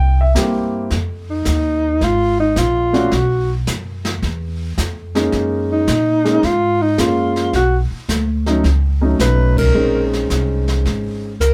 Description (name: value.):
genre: jazz, small-group swing and bop.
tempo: 109 BPM.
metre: 4/4.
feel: swing 68% on 8ths.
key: F minor.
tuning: A4 = 440 Hz.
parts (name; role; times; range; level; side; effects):
warm grand piano; accompaniment; 0.0-11.3 s; F#3 to G5; -21 LUFS; equal; none.
upright bass; bass; 0.0-11.5 s; Ab1 to Bb2; -21 LUFS; equal; none.
jazz brush drum kit; drums; 0.4-11.5 s; brushed snare drum, hi-hat, kick drum, ride cymbal, snare drum; -27 LUFS; equal; none.
mellow alto saxophone; melody; 1.3-11.5 s; Eb4 to B4; -19 LUFS; equal; none.
room: moderate small room reverb, RT60 0.6 s.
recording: band playing live in one room.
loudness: -17 LUFS.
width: mono.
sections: 0.9-11.5 A section.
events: band accent 9.5.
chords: 0.0 C7; 0.9 Fm7; 3.1 B5; 4.2 E; 5.3 Gb69; 7.5 B9; 9.7 Bbm11.